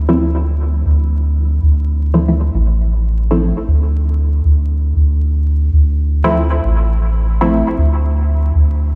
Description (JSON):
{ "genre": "dub techno", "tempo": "117 BPM", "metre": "4/4", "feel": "swing 56% on 16ths", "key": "D minor", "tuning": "A4 = 440 Hz", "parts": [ { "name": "dark analog pad", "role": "sustained chords", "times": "0.0-0.8 s", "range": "F3 to D5", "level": "-52 LUFS", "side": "equal", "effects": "none" }, { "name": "soft dub sub bass", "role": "bass", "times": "0.0-9.0 s", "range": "A1 to D2", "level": "-15 LUFS", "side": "equal", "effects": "tube saturation" }, { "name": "filtered dub chord stab", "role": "stabs", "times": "0.1-7.7 s", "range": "F3 to E4", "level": "-21 LUFS", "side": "equal", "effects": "chorus, phaser, dub echo" } ], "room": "light reverb", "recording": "played on a big sound system in a bare room, stone room reverb, vinyl crackle", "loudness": "-15 LUFS", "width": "mono", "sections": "0.9-9.0 A section", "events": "none", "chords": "0.0 Dm7" }